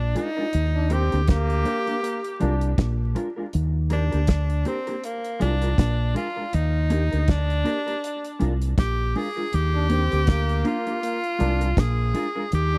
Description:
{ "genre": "roots reggae", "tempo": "80 BPM", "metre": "4/4", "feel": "swing 57% on 16ths", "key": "Eb major", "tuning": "A4 = 439 Hz", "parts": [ { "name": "bright tenor saxophone", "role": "melody", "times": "0.0-12.8 s", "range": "Bb3 to Ab4", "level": "-30 LUFS", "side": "equal", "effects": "tape echo" }, { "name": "fingered electric bass", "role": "bass", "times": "0.0-12.8 s", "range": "Bb1 to Eb2", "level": "-25 LUFS", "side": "equal", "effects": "none" }, { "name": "mellow electric guitar", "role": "accompaniment", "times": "0.1-12.4 s", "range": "Ab3 to Bb4", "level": "-32 LUFS", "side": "equal", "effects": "analog chorus, tape echo" }, { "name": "damped 70s drum kit", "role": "drums", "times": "0.2-12.7 s", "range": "hi-hat, kick drum, snare drum", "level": "-24 LUFS", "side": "equal", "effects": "none" }, { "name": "clear trombone", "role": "second line", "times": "0.7-2.7, 9.7-12.8 s", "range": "Bb3 to D4", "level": "-33 LUFS", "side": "equal", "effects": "tape echo" } ], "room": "studio ambience", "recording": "dry, close 1970s-style studio recording, vinyl crackle", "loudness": "-24 LUFS", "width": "mono", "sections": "0.0-12.8 A section", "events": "none", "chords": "0.0 Bb7; 0.5 Ebmaj7; 2.0 Bb7; 3.5 Ebmaj7; 5.0 Bb7; 6.5 Ebmaj7; 8.0 Bb7; 9.5 Ebmaj7; 11.0 Bb7", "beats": "| 0.54 1.29 2.04 2.79 | 3.54 4.28 5.03 5.78 | 6.53 7.28 8.03 8.78 | 9.53 10.27 11.02 11.77 | 12.52" }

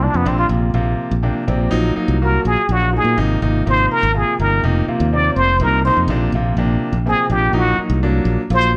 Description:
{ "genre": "electric jazz fusion", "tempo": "82 BPM (dotted quarters)", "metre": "6/8", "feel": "straight", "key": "Bb mixolydian", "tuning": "A4 = 438 Hz", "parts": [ { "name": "trumpet with plunger mute", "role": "melody", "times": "0.0-8.8 s", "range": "Cb4 to D5", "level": "-20 LUFS", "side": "equal", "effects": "none" }, { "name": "bright concert grand piano", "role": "accompaniment", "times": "0.0-8.8 s", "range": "C3 to G5", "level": "-23 LUFS", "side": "equal", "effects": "none" }, { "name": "modern bright fingered electric bass", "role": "bass", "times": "0.0-8.8 s", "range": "F1 to Bb2", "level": "-20 LUFS", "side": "equal", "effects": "none" } ], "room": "light reverb", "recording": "none", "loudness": "-17 LUFS", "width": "mono", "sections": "0.0-8.8 A section", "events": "muted trumpet solo 0.0-8.8; grand piano fill 1.0-1.7", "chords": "0.3 Bbadd9; 1.7 Ebmadd9/Bb; 3.2 Abmaj9; 4.6 F7sus4; 6.1 Bbadd9; 7.6 Ebmadd9/Bb", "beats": "| 0.28 1.00 | 1.73 2.46 | 3.19 3.92 | 4.64 5.37 | 6.10 6.83 | 7.55 8.28" }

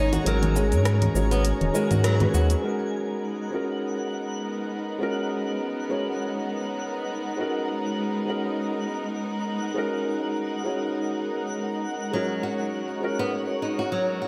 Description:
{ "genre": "organic downtempo", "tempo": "101 BPM", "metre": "4/4", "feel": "swing 55% on 16ths", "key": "G# minor", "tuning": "A4 = 440 Hz", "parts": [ { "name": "felt-muted upright piano", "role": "accompaniment", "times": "0.0-14.3 s", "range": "G#3 to C#5", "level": "-31 LUFS", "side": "equal", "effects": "tape echo" }, { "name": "dark studio string section", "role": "sustained chords", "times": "0.0-14.3 s", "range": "G#3 to A#5", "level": "-33 LUFS", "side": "equal", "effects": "none" }, { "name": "flamenco guitar", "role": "arpeggios", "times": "0.0-2.5, 12.1-14.3 s", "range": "F#3 to F#4", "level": "-32 LUFS", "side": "equal", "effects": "tape echo" }, { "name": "warm sub bass", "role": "bass", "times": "0.0-2.6 s", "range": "D#1 to G#2", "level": "-25 LUFS", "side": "equal", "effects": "none" }, { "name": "twinkling granular texture", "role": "texture", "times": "0.0-14.3 s", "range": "F#5 to G#5", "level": "-41 LUFS", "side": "equal", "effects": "built-in reverb, subtle chorus" }, { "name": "deep house drum kit", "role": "drums", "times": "0.1-2.6 s", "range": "congas, hi-hat, rim click, shaker", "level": "-33 LUFS", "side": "equal", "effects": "overdrive, low-pass filter on hats, low-pass filter on perc, low-pass filter on snare" }, { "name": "bongos and congas", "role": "percussion", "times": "0.1-2.6 s", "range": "none", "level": "-34 LUFS", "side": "equal", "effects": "none" } ], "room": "wet plate reverb, RT60 1.7 s, small room ambience", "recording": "dreamy mix soaked in reverb", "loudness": "-26 LUFS", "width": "mono", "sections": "0.0-2.6 A section; 2.6-14.3 B section", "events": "band accent 2.0", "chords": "0.0 G#m7", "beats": "| 0.26 0.85 1.45 2.04 | 2.63 3.23 3.82 4.42 | 5.01 5.61 6.20 6.79 | 7.39 7.98 8.57 9.17 | 9.76 10.36 10.95 11.54 | 12.14 12.73 13.33 13.92" }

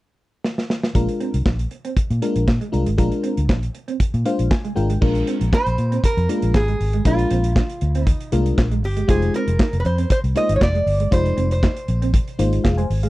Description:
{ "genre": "early-eighties boogie funk", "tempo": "118 BPM", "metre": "4/4", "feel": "straight", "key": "unclear", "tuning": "A4 = 439 Hz", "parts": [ { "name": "modern studio drum kit", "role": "drums", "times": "0.4-13.1 s", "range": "crash cymbal, handclaps, hi-hat, kick drum, snare drum", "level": "-20 LUFS", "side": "equal", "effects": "vintage 12-bit sampler grit" }, { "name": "FM electric piano with soft pad layer", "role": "accompaniment", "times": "0.9-13.1 s", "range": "Ab3 to Ab5", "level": "-23 LUFS", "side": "left 3 dB", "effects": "chorus" }, { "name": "mellow electric guitar", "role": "riff", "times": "0.9-13.1 s", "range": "Ab3 to F4", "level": "-28 LUFS", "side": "right 6 dB", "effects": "lush chorus" }, { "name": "vintage muted fingered electric bass", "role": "bass", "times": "1.0-13.1 s", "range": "F1 to Bb2", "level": "-20 LUFS", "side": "equal", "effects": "none" }, { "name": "lap resonator guitar", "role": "melody", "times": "5.5-12.5 s", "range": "F4 to Eb5", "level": "-23 LUFS", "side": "right 1 dB", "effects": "none" } ], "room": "little or no reverb", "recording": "dry, close 1970s-style studio recording", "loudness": "-17 LUFS", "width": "side -18 dB against mid", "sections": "1.0-5.0 A section; 5.0-13.1 B section", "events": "drum fill 0.4-1.0; FM electric piano fill 4.0-5.0", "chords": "0.0 N.C.; 1.0 Bb7; 9.1 Fm7", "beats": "0.44 | 0.95 1.46 1.97 2.48 | 2.98 3.49 4.00 4.51 | 5.02 5.53 6.04 6.54 | 7.05 7.56 8.07 8.58 | 9.09 9.60 10.10 10.61 | 11.12 11.63 12.14 12.65" }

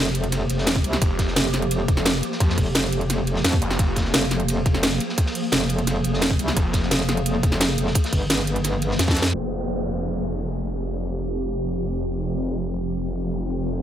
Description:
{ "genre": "dark technical drum and bass", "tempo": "173 BPM", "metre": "4/4", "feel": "straight", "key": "F minor", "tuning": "A4 = 440 Hz", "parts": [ { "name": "swarming drone", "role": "sustained chords", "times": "0.0-13.8 s", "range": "F3 to C5", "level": "-28 LUFS", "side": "right 1 dB", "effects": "built-in reverb, sidechain pumping" }, { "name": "metallic wobble bass", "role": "bass", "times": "0.0-9.3 s", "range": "F1 to F2", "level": "-23 LUFS", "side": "equal", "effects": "chorus" }, { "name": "crunchy breakbeat drum kit", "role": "drums", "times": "0.1-9.3 s", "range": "hi-hat, ride cymbal, snare drum", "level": "-31 LUFS", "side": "equal", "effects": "high-pass filter on cymbals, high-pass filter on hats, high-pass filter on snare, high-pass filter on room" }, { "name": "drum and bass drum kit", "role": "drums", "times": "0.1-13.7 s", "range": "crash cymbal, hi-hat, snare drum", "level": "-23 LUFS", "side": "right 1 dB", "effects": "overdrive" }, { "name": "electronic kick drum", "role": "drums", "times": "0.8-9.2 s", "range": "none", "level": "-21 LUFS", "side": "equal", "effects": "overdrive" }, { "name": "snarling distorted saw bass", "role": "bass", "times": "1.0-4.1, 6.6-6.9, 9.3-13.8 s", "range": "F1 to F2", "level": "-27 LUFS", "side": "equal", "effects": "overdrive, sidechain pumping" }, { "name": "downlifter", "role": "sound effects", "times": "9.3-12.1 s", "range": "none", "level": "-34 LUFS", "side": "equal", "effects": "none" } ], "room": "studio reverb", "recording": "low-pass filter", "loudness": "-20 LUFS", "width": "side -10 dB against mid", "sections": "0.0-9.3 A section; 9.3-13.8 B section", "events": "drum fill 9.0-9.3; filter sweep 9.3-13.8", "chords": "0.0 F5", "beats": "0.32 0.67 | 1.02 1.36 1.71 2.06 | 2.40 2.75 3.10 3.44 | 3.79 4.14 4.49 4.83 | 5.18 5.53 5.87 6.22 | 6.57 6.91 7.26 7.61 | 7.95 8.30 8.65 8.99 | 9.34 9.69 10.03 10.38 | 10.73 11.07 11.42 11.77 | 12.12 12.46 12.81 13.16 | 13.50" }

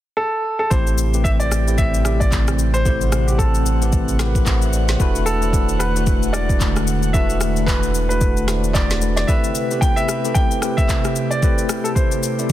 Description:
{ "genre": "amapiano", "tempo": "112 BPM", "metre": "4/4", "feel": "swing 58% on 16ths", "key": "A dorian", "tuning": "A4 = 440 Hz", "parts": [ { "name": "warm grand piano", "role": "melody", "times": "0.2-12.5 s", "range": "G4 to G5", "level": "-24 LUFS", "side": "equal", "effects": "ping-pong delay" }, { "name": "tine electric piano", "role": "accompaniment", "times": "0.7-12.5 s", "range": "G#3 to F#5", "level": "-24 LUFS", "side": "left 2 dB", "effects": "medium stereo tremolo" }, { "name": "airy breathy pad", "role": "sustained chords", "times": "0.7-12.5 s", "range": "C3 to F#5", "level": "-26 LUFS", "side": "right 1 dB", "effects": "chorus, sidechain pumping" }, { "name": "warm sub bass", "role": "bass", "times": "0.7-9.2 s", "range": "E1 to A1", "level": "-20 LUFS", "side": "equal", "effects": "none" }, { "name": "afro-pop drum kit", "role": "drums", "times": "0.7-12.5 s", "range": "handclaps, kick drum, rim click, shaker, snare drum", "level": "-20 LUFS", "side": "equal", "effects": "none" } ], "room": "little or no reverb", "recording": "dense, heavily limited modern master", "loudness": "-16 LUFS", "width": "side -13 dB against mid", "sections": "0.7-12.5 A section", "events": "none", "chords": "0.0 N.C.; 0.7 Am9; 5.0 E9sus4; 9.3 Am9", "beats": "0.18 | 0.71 1.25 1.78 2.32 | 2.86 3.39 3.93 4.46 | 5.00 5.53 6.07 6.61 | 7.14 7.68 8.21 8.75 | 9.28 9.82 10.36 10.89 | 11.43 11.96 12.50" }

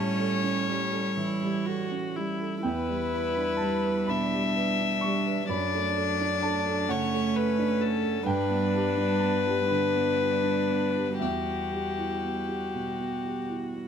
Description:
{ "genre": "neoclassical piano and strings", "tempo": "42 BPM (dotted quarters)", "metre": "6/8", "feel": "uneven beats, rubato", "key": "E dorian", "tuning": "A4 = 440 Hz", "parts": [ { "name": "rich violin", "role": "melody", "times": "0.0-13.5 s", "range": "G4 to E5", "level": "-29 LUFS", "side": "left 7 dB", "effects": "none" }, { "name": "rich cello", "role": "second line", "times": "0.0-13.9 s", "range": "F#3 to A3", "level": "-32 LUFS", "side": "right 4 dB", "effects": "none" }, { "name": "dark grand piano", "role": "accompaniment", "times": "0.0-13.9 s", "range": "E2 to C#6", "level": "-30 LUFS", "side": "right 3 dB", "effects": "none" }, { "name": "warm viola", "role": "accompaniment", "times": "0.0-13.9 s", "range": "C#4 to F#4", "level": "-34 LUFS", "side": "right 2 dB", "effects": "none" } ], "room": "little or no reverb", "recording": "close, detailed microphones", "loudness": "-25 LUFS", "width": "side -8 dB against mid", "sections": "0.0-13.9 A section", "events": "none", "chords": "0.0 A7; 2.6 Em7; 5.5 Dmaj7/F#; 8.3 G; 11.2 Emadd9", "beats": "1.15 | 2.63 4.07 | 5.48 6.88 | 8.26 9.70 | 11.19 12.73" }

